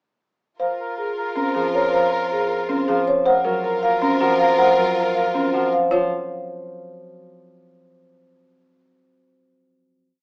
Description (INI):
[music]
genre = classical, minimalist pattern music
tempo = 316 BPM (eighths)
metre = 7/8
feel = straight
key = Gb lydian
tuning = A4 = 440 Hz
[part]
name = marimba with soft mallets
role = melody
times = 0.6-6.1 s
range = Ab4 to Gb5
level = -25 LUFS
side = equal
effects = none
[part]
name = mellow soprano saxophone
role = second line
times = 0.6-5.7 s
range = Bb4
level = -28 LUFS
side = equal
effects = none
[part]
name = warm symphonic violin section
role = sustained chords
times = 0.6-5.7 s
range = F4 to Bb4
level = -30 LUFS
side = equal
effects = none
[part]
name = folk marimba with medium mallets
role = arpeggios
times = 0.6-6.1 s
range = Db4 to C5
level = -26 LUFS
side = equal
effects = none
[part]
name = Celtic harp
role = accompaniment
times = 1.4-7.3 s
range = F3 to C4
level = -26 LUFS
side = equal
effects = none
[sound]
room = moderate large studio reverb, RT60 0.9 s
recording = small speaker sound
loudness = -20 LUFS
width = mono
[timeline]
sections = 0.6-5.9 A section; 5.9-7.2 final chord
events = none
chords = 0.6 Db6; 3.3 Gbmaj7; 5.9 Gb5